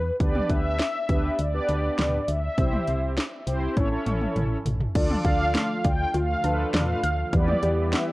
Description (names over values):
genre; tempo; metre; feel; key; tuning
synth-pop; 101 BPM; 4/4; straight; D dorian; A4 = 443 Hz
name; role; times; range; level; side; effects
mellow synth brass; melody; 0.0-8.1 s; B4 to G5; -28 LUFS; equal; chorus, tape echo
solid FM bass; bass; 0.0-7.9 s; A1 to E2; -27 LUFS; equal; none
mellow synth brass; accompaniment; 0.2-8.1 s; B3 to D5; -30 LUFS; equal; chorus
house drum kit; drums; 0.2-8.1 s; crash cymbal, hi-hat, kick drum, snare drum, toms; -26 LUFS; equal; overdrive
lush unison pad; sustained chords; 5.0-8.1 s; D3 to G4; -34 LUFS; equal; chorus
soft round pluck; arpeggios; 5.0-8.1 s; D3 to F6; -32 LUFS; left 2 dB; chorus
room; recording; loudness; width
light reverb; worn, warbling old tape, cassette tape, warbly pitch drift; -22 LUFS; side -19 dB against mid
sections
0.0-5.0 A section; 5.0-8.1 B section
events
drum fill 3.8-5.0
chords
0.2 G/D; 2.6 C; 3.8 A; 5.0 Dm; 7.3 Em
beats
| 0.20 0.80 1.39 1.99 | 2.58 3.17 3.77 4.36 | 4.96 5.55 6.14 6.74 | 7.33 7.93